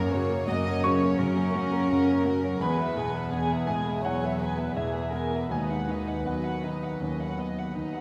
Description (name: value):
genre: cinematic, emotional film score for orchestra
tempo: 79-86 BPM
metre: 4/4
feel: rubato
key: E lydian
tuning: A4 = 440 Hz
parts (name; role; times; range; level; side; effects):
- dark chamber violin section; melody; 0.0-8.0 s; A#4 to G#5; -39 LUFS; equal; none
- warm symphonic violin section; second line; 0.0-8.0 s; G#4 to D#5; -37 LUFS; equal; none
- bright grand piano; accompaniment; 0.0-8.0 s; D#2 to C#6; -32 LUFS; equal; none
- warm studio viola section; accompaniment; 0.0-8.0 s; G#3 to B4; -39 LUFS; equal; none
- concert harp; arpeggios; 0.0-8.0 s; F#2 to B5; -39 LUFS; equal; none
- rich symphonic cello section; bass; 0.0-8.0 s; E3 to C#4; -34 LUFS; equal; none
- warm symphonic double bass section; bass; 0.0-8.0 s; D#2 to F#2; -36 LUFS; equal; none
room: wet scoring stage reverb, RT60 1.6 s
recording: none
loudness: -28 LUFS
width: mono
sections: 0.0-8.0 A section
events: none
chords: 0.0 F#; 2.6 E; 5.5 B/D#